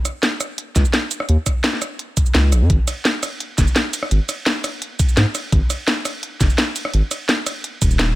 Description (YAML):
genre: liquid drum and bass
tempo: 170 BPM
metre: 4/4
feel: straight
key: unclear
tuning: A4 = 440 Hz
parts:
  - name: garage drum kit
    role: drums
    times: 0.1-8.1 s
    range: hi-hat, ride cymbal, rim click, shaker, snare drum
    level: -20 LUFS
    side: equal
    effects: none
  - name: saturated sub bass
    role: bass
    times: 0.8-8.2 s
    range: D#1 to G#2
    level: -16 LUFS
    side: equal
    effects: none
  - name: electronic kick drum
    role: drums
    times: 0.8-7.9 s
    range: none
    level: -18 LUFS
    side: equal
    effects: none
room: little or no reverb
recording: none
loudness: -17 LUFS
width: side -17 dB against mid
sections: 0.0-8.2 A section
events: none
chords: none